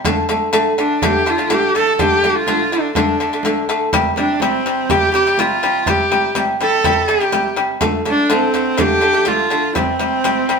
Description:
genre	mongolian traditional, Mongolian folk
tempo	124 BPM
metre	4/4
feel	straight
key	unclear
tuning	A4 = 440 Hz
part	frame drum	percussion	0.0-10.6 s	none	-23 LUFS	right 2 dB	none
part	pipa	arpeggios	0.1-10.6 s	C3 to A3	-17 LUFS	left 2 dB	none
part	bright horsehead fiddle	melody	0.8-10.6 s	C4 to A4	-16 LUFS	right 2 dB	none
room	wet studio reverb, RT60 0.8 s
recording	band playing live in one room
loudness	-14 LUFS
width	side -5 dB against mid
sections	0.0-10.6 A section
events	none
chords	0.1 D5; 3.9 C5; 7.8 D5; 9.8 C5

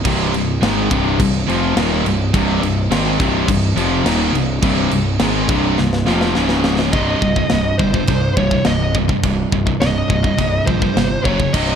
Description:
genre	heavy metal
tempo	104 BPM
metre	4/4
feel	straight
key	C phrygian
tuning	A4 = 439 Hz
part	crunchy overdriven guitar	riff	0.0-6.9 s	C2 to Ab3	-22 LUFS	equal	none
part	scooped high-gain guitar	riff	0.0-11.8 s	C2 to Ab3	-21 LUFS	right 7 dB	distortion
part	fuzz picked electric bass	bass	0.0-11.7 s	C1 to C2	-21 LUFS	equal	overdrive
part	high-gain distorted guitar	riff	0.1-11.8 s	C2 to Ab3	-22 LUFS	left 10 dB	distortion
part	tight metal drum kit	drums	0.1-11.7 s	china cymbal, crash cymbal, kick drum, snare drum	-20 LUFS	equal	none
part	high-gain lead guitar	melody	6.9-11.7 s	C5 to Eb5	-21 LUFS	right 1 dB	distortion, digital delay
room	moderate lush hall reverb, RT60 1.7 s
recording	bright 1980s-style digital production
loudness	-14 LUFS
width	side -7 dB against mid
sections	0.0-6.9 A section; 6.9-11.8 B section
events	drum fill 5.8-6.9; lead electric guitar solo 6.9-11.8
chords	0.0 Cm; 6.4 Db5; 6.9 Cm; 11.3 F#5

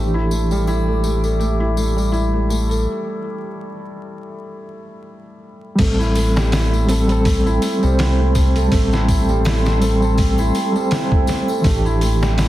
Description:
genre	trip hop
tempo	82 BPM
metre	4/4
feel	swing 56% on 16ths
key	A minor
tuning	A4 = 442 Hz
part	reed electric piano	accompaniment	0.0-12.5 s	E3 to C5	-21 LUFS	equal	tremolo, tape echo
part	deep dark ambient pad	sustained chords	0.0-12.5 s	G4 to D6	-27 LUFS	right 4 dB	chorus, built-in reverb, vintage 12-bit sampler grit
part	felt-muted upright piano	arpeggios	0.0-12.5 s	G3 to A4	-24 LUFS	left 1 dB	low-pass filter, tape echo
part	round analog bass	bass	0.0-12.5 s	A1 to C2	-18 LUFS	equal	none
part	tambourine and triangle	percussion	0.3-12.5 s	none	-34 LUFS	left 6 dB	none
part	trip hop sampler-style drum kit	drums	5.8-12.5 s	crash cymbal, hi-hat, kick drum, snare drum	-20 LUFS	equal	soft clipping on snare
room	little or no reverb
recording	dense, heavily limited modern master, vinyl crackle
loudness	-15 LUFS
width	side -14 dB against mid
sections	0.0-5.8 A section; 5.8-12.5 B section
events	filter sweep on reed electric piano 0.0-5.8; filter sweep on felt piano 0.0-5.8; break 2.9-5.8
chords	0.0 Em7/A; 5.8 Am7; 11.6 Em7/A

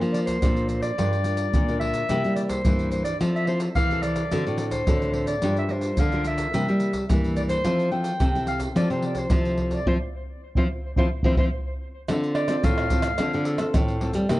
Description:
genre	samba and choro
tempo	108 BPM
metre	4/4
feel	straight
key	F major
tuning	A4 = 440 Hz
part	nylon-string guitar	accompaniment	0.0-14.4 s	G2 to C5	-29 LUFS	left 1 dB	plate reverb
part	nylon-string guitar	bass	0.0-14.4 s	G2 to G3	-26 LUFS	equal	none
part	tube shaker, pandeiro, surdo and tamborim	percussion	0.0-14.4 s	none	-26 LUFS	equal	none
part	warm clarinet	melody	0.1-13.7 s	A4 to G5	-28 LUFS	equal	plate reverb, tape echo
room	moderate studio reverb, RT60 0.6 s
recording	worn, warbling old tape, cassette tape, warbly pitch drift, nothing above 10.5 kHz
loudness	-21 LUFS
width	side -17 dB against mid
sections	0.0-12.1 A section; 12.1-14.4 B section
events	band accent 9.9-12.1; clarinet solo 12.1-14.4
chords	0.0 Bbmaj9; 1.0 Gm7; 2.1 C7; 3.2 Fmaj7; 4.3 D7; 5.4 Gm7; 6.5 C7; 7.6 Fmaj7; 12.1 Dm7

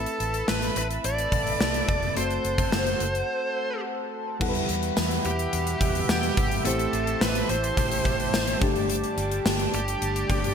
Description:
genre	1980s-style pop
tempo	107 BPM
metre	4/4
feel	straight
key	E minor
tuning	A4 = 440 Hz
part	bluesy overdriven lead guitar	melody	0.0-10.5 s	G4 to D5	-29 LUFS	equal	distortion, ping-pong delay
part	mellow FM electric piano	accompaniment	0.0-10.5 s	G3 to F#5	-32 LUFS	left 2 dB	chorus
part	chorused pulse-width pad	sustained chords	0.0-10.5 s	G4 to D6	-32 LUFS	right 1 dB	none
part	vintage muted fingered electric bass	bass	0.0-10.5 s	F1 to E2	-31 LUFS	equal	none
part	gated 80s drum kit	drums	0.1-10.5 s	crash cymbal, hi-hat, kick drum, snare drum, tambourine	-26 LUFS	equal	gated reverb
part	overdriven semi-hollow guitar	accompaniment	4.4-10.5 s	E2 to A3	-36 LUFS	right 4 dB	none
room	moderate lush hall reverb, RT60 1.7 s, studio ambience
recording	bright 1980s-style digital production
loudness	-23 LUFS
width	side -7 dB against mid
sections	0.0-4.4 A section; 4.4-10.5 B section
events	break 3.3-4.4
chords	0.0 Amadd9; 2.2 F#dim; 4.4 Emadd9; 6.7 Am7; 8.6 Gsus2

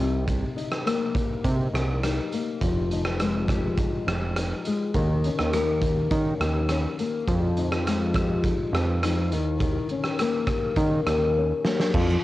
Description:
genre	indie pop, bedroom pop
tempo	103 BPM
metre	4/4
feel	straight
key	unclear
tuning	A4 = 440 Hz
part	flamenco guitar	accompaniment	0.0-12.2 s	C3 to G4	-27 LUFS	left 4 dB	analog chorus, vibrato effect, cassette tape
part	fat analog bass	bass	0.0-12.2 s	F1 to Eb3	-25 LUFS	right 1 dB	none
part	raw garage drum kit	drums	0.3-12.2 s	crash cymbal, hi-hat, kick drum, rim click, shaker, snare drum	-28 LUFS	right 1 dB	cassette tape
room	light reverb, studio ambience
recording	home recording on cassette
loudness	-22 LUFS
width	side -16 dB against mid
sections	0.0-11.9 A section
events	drum fill 11.4-11.9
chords	0.0 Cm7; 2.6 Fm9; 4.9 Eb7; 7.3 Fm9; 9.3 Eb7

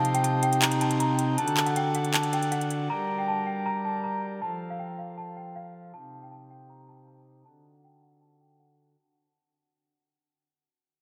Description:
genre	hip hop, trap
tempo	158 BPM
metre	4/4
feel	half-time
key	unclear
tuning	A4 = 439 Hz
part	celesta	melody	0.0-8.8 s	F5 to Bb5	-32 LUFS	equal	subtle chorus, low-pass filter
part	pipe organ, principal chorus	sustained chords	0.0-9.0 s	C3 to D5	-32 LUFS	equal	low-pass filter
part	trap drum kit	drums	0.0-2.8 s	handclaps, hi-hat	-32 LUFS	equal	none
room	wet huge ambient reverb, RT60 4.9 s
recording	dreamy mix soaked in reverb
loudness	-27 LUFS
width	mono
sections	0.0-9.0 A section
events	break 0.0-2.9; fade-out 0.0-9.0; filter sweep 0.0-9.0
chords	0.0 Cm; 1.4 D; 2.9 Gm; 4.4 F; 5.9 Cm; 7.5 D

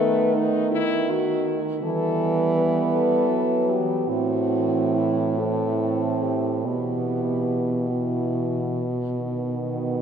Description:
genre	classical, lyrical piece for horn quartet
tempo	43-55 BPM (dotted quarters)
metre	12/8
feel	rubato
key	unclear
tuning	A4 = 440 Hz
part	mellow French horn	melody	0.0-10.0 s	D#4 to B4	-27 LUFS	left 5 dB	none
part	dark French horn	second line	0.0-10.0 s	B3 to C4	-27 LUFS	right 4 dB	none
part	dark French horn	accompaniment	0.0-10.0 s	D#3 to A3	-28 LUFS	left 1 dB	none
part	mellow French horn	bass	0.0-10.0 s	A2 to E3	-25 LUFS	right 2 dB	none
room	wet cathedral reverb, RT60 4.8 s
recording	dark, warm production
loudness	-21 LUFS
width	side -7 dB against mid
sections	0.0-10.0 A section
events	none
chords	0.0 B7/D#; 1.8 Em; 4.1 Am; 6.7 Bsus4; 9.2 B

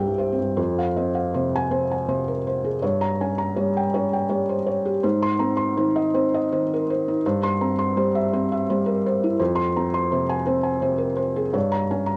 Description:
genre	neoclassical minimalist piano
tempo	82 BPM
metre	3/4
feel	rubato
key	F minor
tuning	A4 = 443 Hz
part	felt-muted upright piano	solo	0.0-12.2 s	C2 to C6	-23 LUFS	equal	none
room	moderate studio reverb, RT60 0.5 s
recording	worn, warbling old tape, cassette tape, warbly pitch drift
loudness	-23 LUFS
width	mono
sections	0.6-12.2 A section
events	none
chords	0.0 C; 0.6 Fm; 2.8 Gdim; 5.0 Ab; 7.2 C/G; 9.4 Fm; 11.6 Gdim

